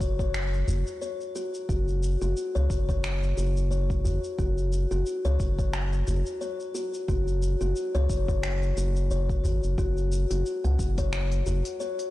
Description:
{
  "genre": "organic downtempo",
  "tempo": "89 BPM",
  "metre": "4/4",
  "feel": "swing 56% on 16ths",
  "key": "unclear",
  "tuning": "A4 = 440 Hz",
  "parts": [
    { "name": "round analog bass", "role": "bass", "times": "0.0-11.6 s", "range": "F#1 to C#2", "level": "-26 LUFS", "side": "equal", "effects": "sidechain pumping" },
    { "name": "electronic kick drum", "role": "drums", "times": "0.0-11.1 s", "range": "none", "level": "-29 LUFS", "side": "equal", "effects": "none" },
    { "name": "organic electronic drum kit", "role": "drums", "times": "0.0-12.1 s", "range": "finger snaps, hi-hat, shaker", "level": "-39 LUFS", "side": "equal", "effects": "soft clipping on snare" },
    { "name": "kalimba", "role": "arpeggios", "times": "0.2-11.9 s", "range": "F#4 to F#5", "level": "-32 LUFS", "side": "left 3 dB", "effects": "tape echo" },
    { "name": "udu", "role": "percussion", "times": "0.7-11.6 s", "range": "none", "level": "-32 LUFS", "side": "equal", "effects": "none" }
  ],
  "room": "little or no reverb",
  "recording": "blown-out, overdriven recording, overdrive, lossy compression artefacts",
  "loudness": "-25 LUFS",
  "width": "side -16 dB against mid",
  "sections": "0.0-12.1 A section",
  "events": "none",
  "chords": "0.0 F#5",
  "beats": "0.34 1.02 | 1.69 2.37 3.04 3.71 | 4.39 5.06 5.74 6.41 | 7.08 7.76 8.43 9.11 | 9.78 10.46 11.13 11.80"
}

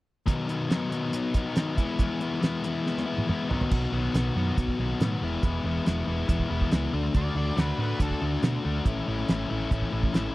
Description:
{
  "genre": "classic rock",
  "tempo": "140 BPM",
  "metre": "4/4",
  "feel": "straight",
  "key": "unclear",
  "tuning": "A4 = 439 Hz",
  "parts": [
    { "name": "biting overdriven guitar", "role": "riff", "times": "0.3-10.3 s", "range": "A2 to F#4", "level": "-28 LUFS", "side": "left 3 dB", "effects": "none" },
    { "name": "cloth-damped thuddy drum kit", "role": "drums", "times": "0.3-10.2 s", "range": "crash cymbal, hi-hat, kick drum, snare drum, toms", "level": "-26 LUFS", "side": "right 1 dB", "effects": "none" },
    { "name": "hollow-body short-scale fingered electric bass", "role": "bass", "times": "3.7-10.3 s", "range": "E1 to B2", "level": "-29 LUFS", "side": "right 1 dB", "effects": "none" },
    { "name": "octave-fuzz lead guitar", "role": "second line", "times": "7.2-8.2 s", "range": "A4 to D5", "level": "-35 LUFS", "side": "equal", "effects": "distortion" }
  ],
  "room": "light reverb",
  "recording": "dry, close 1970s-style studio recording",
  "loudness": "-25 LUFS",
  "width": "side -18 dB against mid",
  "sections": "0.3-3.7 A section; 3.7-10.3 B section",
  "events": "drum fill 2.9-3.7",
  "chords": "0.3 B; 1.8 E; 3.5 B; 5.2 E; 6.9 D; 8.9 A",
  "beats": "| 0.27 0.70 1.13 1.56 | 1.99 2.42 2.85 3.28 | 3.71 4.14 4.57 5.00 | 5.43 5.86 6.28 6.71 | 7.14 7.57 8.00 8.43 | 8.85 9.28 9.71 10.14"
}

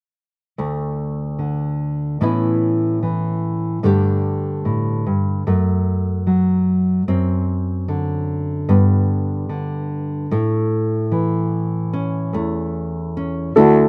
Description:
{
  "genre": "acoustic folk-pop ballad",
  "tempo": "74 BPM",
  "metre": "4/4",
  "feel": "straight",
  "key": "unclear",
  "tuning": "A4 = 440 Hz",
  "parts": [
    { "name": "nylon-string guitar", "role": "accompaniment", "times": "0.6-13.9 s", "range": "D2 to G4", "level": "-20 LUFS", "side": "equal", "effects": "none" },
    { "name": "dark upright piano", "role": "melody", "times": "13.6-13.9 s", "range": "E4 to A4", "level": "-13 LUFS", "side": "equal", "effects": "none" },
    { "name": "rich cello", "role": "bass", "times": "13.6-13.7 s", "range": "D2", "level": "-16 LUFS", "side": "equal", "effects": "none" }
  ],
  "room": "light reverb",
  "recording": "recorded outdoors, with no room sound",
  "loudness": "-20 LUFS",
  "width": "mono",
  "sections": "0.6-13.6 A section",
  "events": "none",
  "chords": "0.6 D5; 2.2 Aadd9; 3.8 Gsus2; 5.4 F#m; 7.1 D7/F#; 8.7 G; 10.3 A",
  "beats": "| 0.57 1.39 2.20 3.01 | 3.82 4.63 5.45 6.25 | 7.06 7.87 8.68 9.49 | 10.30 11.11 11.93 12.75 | 13.57"
}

